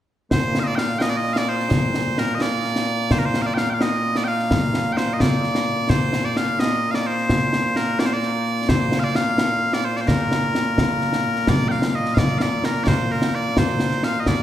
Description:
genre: scottish traditional, Scottish pipe music.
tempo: 86 BPM (dotted quarters).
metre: 6/8.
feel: straight.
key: Bb major.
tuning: A4 = 439 Hz.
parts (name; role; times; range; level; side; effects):
loud bright bagpipes; melody; 0.3-14.4 s; Bb2 to G5; -21 LUFS; equal; none.
concert snare drum and concert bass drum; drums; 0.3-14.4 s; none; -22 LUFS; left 1 dB; none.
room: wet recital hall reverb, RT60 1.8 s.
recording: heard from further back in the room.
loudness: -18 LUFS.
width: side -11 dB against mid.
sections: 0.3-11.5 A section; 11.5-14.4 B section.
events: none.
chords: none.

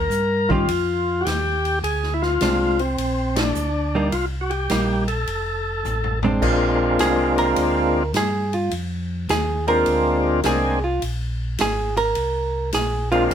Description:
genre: soul jazz organ trio.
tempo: 105 BPM.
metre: 4/4.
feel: swing 67% on 8ths.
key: Bb mixolydian.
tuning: A4 = 442 Hz.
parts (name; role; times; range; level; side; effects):
percussive tonewheel organ; melody; 0.0-13.3 s; Ab3 to Bb4; -21 LUFS; left 1 dB; slow rotary speaker, overdrive.
mellow tonewheel organ; bass; 0.0-13.3 s; F1 to G2; -25 LUFS; equal; slow rotary speaker.
swinging big-band drum kit; drums; 0.1-13.3 s; crash cymbal, hi-hat, kick drum, ride cymbal, snare drum, toms; -29 LUFS; left 1 dB; none.
hollow-body jazz guitar; accompaniment; 0.5-13.2 s; Eb3 to Bb4; -22 LUFS; right 2 dB; none.
room: light reverb.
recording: minimal, uncompressed stereo recording.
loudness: -19 LUFS.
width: side -9 dB against mid.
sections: 0.0-6.4 A section; 6.4-13.3 B section.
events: band accent 3.3; drum fill 5.9-6.4; hollow-body jazz guitar solo 6.4-13.3.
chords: 0.0 Ebadd9; 1.8 Bb9; 4.1 Cm7; 5.3 F; 6.4 Bb9.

